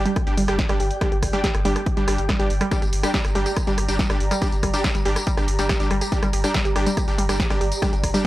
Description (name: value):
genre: driving peak-time techno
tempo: 141 BPM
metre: 4/4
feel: straight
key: G minor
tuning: A4 = 441 Hz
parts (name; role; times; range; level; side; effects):
- supersaw stab; stabs; 0.0-8.2 s; G3 to G4; -27 LUFS; equal; vintage 12-bit sampler grit, sidechain pumping, analog delay
- saturated sub bass; bass; 0.0-8.1 s; G1; -26 LUFS; equal; sidechain pumping, low-pass filter
- airy breathy pad; texture; 0.0-8.3 s; G4 to Bb5; -31 LUFS; right 1 dB; chorus, sidechain pumping
- warbly dusty pluck; riff; 0.1-8.3 s; G3 to G4; -27 LUFS; right 1 dB; chorus, tube saturation, sidechain pumping, tape echo
- punchy analog drum machine; drums; 0.1-8.3 s; hi-hat, rim click, snare drum, tambourine; -28 LUFS; equal; sidechain pumping on hats, sidechain pumping on cymbals, sidechain pumping on perc
- electronic kick drum; drums; 0.2-8.3 s; none; -24 LUFS; equal; overdrive
room: little or no reverb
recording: dry, gritty hardware recording, transformer saturation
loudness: -19 LUFS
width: side -16 dB against mid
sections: 0.0-8.3 A section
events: none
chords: 0.0 G5